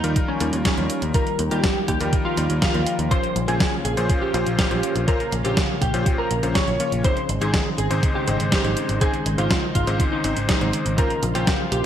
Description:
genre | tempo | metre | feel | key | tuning
italo disco | 122 BPM | 4/4 | straight | Bb dorian | A4 = 440 Hz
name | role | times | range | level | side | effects
lightly driven lead guitar | melody | 0.0-11.9 s | Db4 to Db5 | -26 LUFS | right 1 dB | ensemble chorus, digital delay
lush unison pad | sustained chords | 0.0-11.9 s | Db3 to C5 | -28 LUFS | equal | chorus
clear electric grand piano | stabs | 0.0-11.5 s | Ab2 to Db5 | -28 LUFS | left 2 dB | none
picked electric bass | bass | 0.0-11.8 s | Ab1 to Eb2 | -25 LUFS | equal | none
clean 12-bit digital drum machine | drums | 0.0-11.8 s | hi-hat, snare drum | -25 LUFS | right 1 dB | gated reverb
electronic kick drum | drums | 0.2-11.6 s | none | -23 LUFS | equal | none
room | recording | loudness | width
moderate plate reverb, RT60 1.2 s | bright 1980s-style digital production | -19 LUFS | side -10 dB against mid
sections
0.0-11.9 A section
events
none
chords
0.0 Ebadd9; 3.1 Bbmadd9; 7.0 Ab; 11.0 Bbmadd9

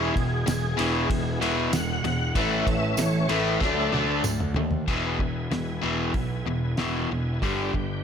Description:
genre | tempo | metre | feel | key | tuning
classic rock | 95 BPM | 4/4 | straight | E mixolydian | A4 = 438 Hz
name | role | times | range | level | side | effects
tonewheel organ | sustained chords | 0.0-8.0 s | E3 to G#5 | -31 LUFS | equal | slow rotary speaker, overdrive, chorus vibrato
distorted electric guitar | riff | 0.0-8.0 s | E2 to D4 | -30 LUFS | right 10 dB | distortion
overdriven electric guitar | riff | 0.0-8.0 s | E2 to D4 | -28 LUFS | left 10 dB | none
fuzz picked electric bass | bass | 0.0-8.0 s | E1 to D#2 | -30 LUFS | equal | overdrive
cloth-damped thuddy drum kit | drums | 0.2-7.9 s | crash cymbal, hi-hat, kick drum, ride cymbal, snare drum, toms | -30 LUFS | equal | none
tambourine | percussion | 0.5-4.4 s | none | -37 LUFS | right 7 dB | none
room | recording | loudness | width
light reverb, small room ambience | none | -23 LUFS | side -7 dB against mid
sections
0.0-4.9 A section; 4.9-8.0 B section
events
tonewheel organ solo 0.0-4.9; drum fill 3.6-4.9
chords
0.0 E; 2.4 A; 3.6 D; 4.9 E; 7.4 G

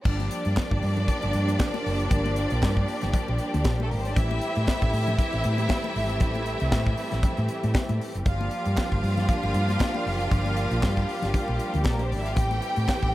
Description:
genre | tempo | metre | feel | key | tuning
disco | 117 BPM | 4/4 | swing 56% on 16ths | G dorian | A4 = 440 Hz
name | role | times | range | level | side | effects
clear studio violin section | second line | 0.0-13.1 s | A3 to G5 | -30 LUFS | equal | none
clear studio string section | sustained chords | 0.1-13.1 s | E3 to G4 | -31 LUFS | equal | none
hollow-body short-scale fingered electric bass | bass | 0.1-13.1 s | F#1 to A2 | -26 LUFS | equal | none
tight funk drum kit | drums | 0.1-13.1 s | crash cymbal, hi-hat, kick drum, snare drum | -27 LUFS | equal | none
congas | percussion | 0.1-13.1 s | none | -36 LUFS | left 5 dB | none
group handclap | percussion | 0.6-13.0 s | none | -41 LUFS | right 4 dB | none
room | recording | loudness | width
studio ambience | none | -23 LUFS | side -16 dB against mid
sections
0.1-13.1 A section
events
none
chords
0.1 Gm7; 4.2 Am7; 8.3 Gm7; 12.4 Am7

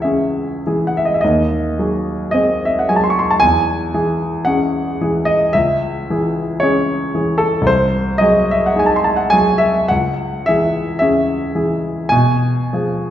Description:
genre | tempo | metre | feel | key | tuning
classical, romantic nocturne for solo piano | 48-58 BPM | 4/4 | rubato | C# minor | A4 = 440 Hz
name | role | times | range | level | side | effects
warm grand piano | solo | 0.0-13.1 s | B#1 to C#6 | -14 LUFS | equal | none
room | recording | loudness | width
wet recital hall reverb, RT60 1.6 s | heard from further back in the room | -14 LUFS | side -11 dB against mid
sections
0.0-13.1 A section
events
none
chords
0.0 C#m; 1.2 G#7/D#; 3.4 C#m/E; 5.5 C#m; 7.7 G#7/B#; 9.9 C#m; 12.1 Fdim/Cb

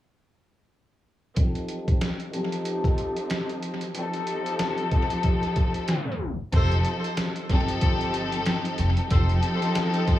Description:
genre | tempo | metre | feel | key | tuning
hip hop, boom-bap hip-hop | 93 BPM | 4/4 | swing 58% on 16ths | unclear | A4 = 441 Hz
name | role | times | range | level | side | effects
warm studio string section | accompaniment | 1.4-10.2 s | F3 to A4 | -27 LUFS | left 1 dB | cassette tape, high-pass filter, low-pass filter, tape echo
trip hop sampler-style drum kit | drums | 1.4-10.2 s | hi-hat, kick drum, snare drum | -26 LUFS | equal | overdrive, tape echo
warm horn section | stabs | 6.5-9.3 s | F4 to C5 | -35 LUFS | equal | high-pass filter, low-pass filter, tape echo
upright bass | bass | 6.5-10.2 s | F1 to A1 | -25 LUFS | equal | none
room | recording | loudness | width
studio reverb | echo-heavy mix, tape stop, small room ambience | -23 LUFS | side -13 dB against mid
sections
1.4-6.5 A section; 6.5-10.2 B section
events
filter sweep on string section 1.4-6.5; tape stop 5.9-6.5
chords
1.4 F7

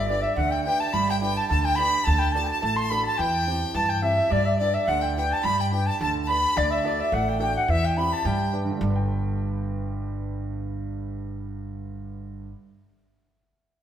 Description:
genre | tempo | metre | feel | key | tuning
celtic folk, Celtic reel | 213 BPM | 4/4 | swing 53% on 8ths | G major | A4 = 443 Hz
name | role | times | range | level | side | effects
bright reedy baroque flute | melody | 0.0-8.5 s | D5 to C6 | -24 LUFS | equal | none
Celtic harp | second line | 0.0-9.8 s | D5 to C6 | -32 LUFS | right 3 dB | none
bright fiddle | second line | 0.0-8.5 s | D5 to C6 | -32 LUFS | left 3 dB | none
clear upright piano | accompaniment | 0.0-12.6 s | G2 to G5 | -31 LUFS | right 4 dB | none
upright bass | bass | 0.0-12.5 s | G1 to G2 | -28 LUFS | equal | none
room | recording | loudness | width
wet stone room reverb, RT60 1.4 s | band playing live in one room | -22 LUFS | side -10 dB against mid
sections
0.0-8.8 A section; 8.8-11.1 B section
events
none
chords
0.0 G; 2.1 D; 3.2 C/E; 4.3 G; 6.6 D; 7.7 C/E; 8.2 G

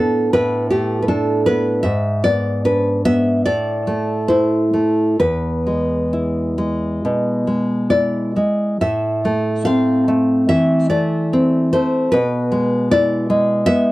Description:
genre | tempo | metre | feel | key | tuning
romantic piece for solo classical guitar | 65-81 BPM | 4/4 | rubato | A minor | A4 = 436 Hz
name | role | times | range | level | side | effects
nylon-string guitar | solo | 0.0-13.9 s | E2 to F5 | -15 LUFS | equal | none
room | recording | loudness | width
light reverb | dry, close 1970s-style studio recording | -15 LUFS | side -18 dB against mid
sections
0.0-13.9 A section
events
none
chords
0.0 A9sus4; 1.9 G#dim; 3.5 Am; 5.2 E; 8.8 Am; 12.1 E7/B

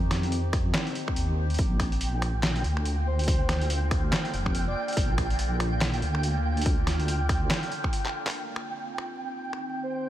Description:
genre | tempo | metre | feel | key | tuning
deep dubstep | 142 BPM | 4/4 | swing 59% on 16ths, half-time | unclear | A4 = 440 Hz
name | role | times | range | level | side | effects
overtone-sweeping drone | sustained chords | 0.0-10.1 s | D3 to G4 | -35 LUFS | equal | chorus, built-in reverb, phaser
deep soft wobble bass | bass | 0.0-7.5 s | F1 to F2 | -27 LUFS | equal | chorus, tube saturation
trip hop sampler-style drum kit | drums | 0.1-9.6 s | finger snaps, handclaps, hi-hat, snare drum | -31 LUFS | equal | studio reverb
electronic kick drum | drums | 0.5-7.9 s | none | -28 LUFS | equal | studio reverb
flickering grainy texture | texture | 1.8-10.1 s | G5 | -35 LUFS | right 2 dB | built-in reverb
breathy flute-like synth lead | melody | 3.1-5.0, 9.8-10.1 s | C5 to D5 | -37 LUFS | equal | chorus, dub echo
room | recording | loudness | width
little or no reverb | vinyl crackle | -25 LUFS | side -12 dB against mid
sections
0.0-8.3 A section; 8.3-10.1 B section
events
drop 0.0-8.3; break 7.9-8.3; drum fill 8.0-8.3; filter sweep on synth drone 8.3-10.1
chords
0.0 Cm; 1.6 Bb; 8.3 Cm

